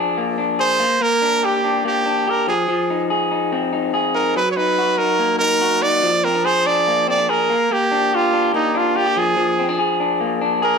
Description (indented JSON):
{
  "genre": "indie pop",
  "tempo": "144 BPM",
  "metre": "4/4",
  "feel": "straight",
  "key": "unclear",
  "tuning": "A4 = 440 Hz",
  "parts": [
    { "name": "electric guitar through a small old amp", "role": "arpeggios", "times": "0.0-10.8 s", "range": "F3 to Ab4", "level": "-19 LUFS", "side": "left 3 dB", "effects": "slapback echo" },
    { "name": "clear trumpet", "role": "melody", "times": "0.6-10.8 s", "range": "Eb4 to D5", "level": "-17 LUFS", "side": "right 3 dB", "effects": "slapback echo" }
  ],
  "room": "moderate studio reverb, RT60 0.6 s",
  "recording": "none",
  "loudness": "-16 LUFS",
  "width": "side -5 dB against mid",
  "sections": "0.0-10.8 A section",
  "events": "none",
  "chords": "0.0 Bb7; 0.8 Bb6; 2.5 Ab6; 4.4 Bmaj7; 6.0 Bb7; 7.5 Bb6; 9.2 Bb7",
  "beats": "0.17 0.59 | 1.01 1.43 1.85 2.27 | 2.69 3.10 3.52 3.94 | 4.36 4.78 5.20 5.62 | 6.03 6.45 6.87 7.29 | 7.71 8.12 8.54 8.96 | 9.37 9.79 10.21 10.62"
}